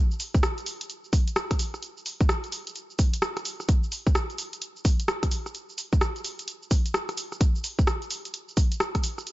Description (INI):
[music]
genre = UK garage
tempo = 129 BPM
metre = 4/4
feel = swing 63% on 16ths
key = none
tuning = none
[part]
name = punchy analog drum machine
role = drums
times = 0.1-9.3 s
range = cabasa, hi-hat, rim click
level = -30 LUFS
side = equal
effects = none
[part]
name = electronic kick drum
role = drums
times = 0.3-9.0 s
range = none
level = -22 LUFS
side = equal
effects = none
[sound]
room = digital ambience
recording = nothing above 7.6 kHz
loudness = -24 LUFS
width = side -18 dB against mid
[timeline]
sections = 0.0-9.3 A section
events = none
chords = none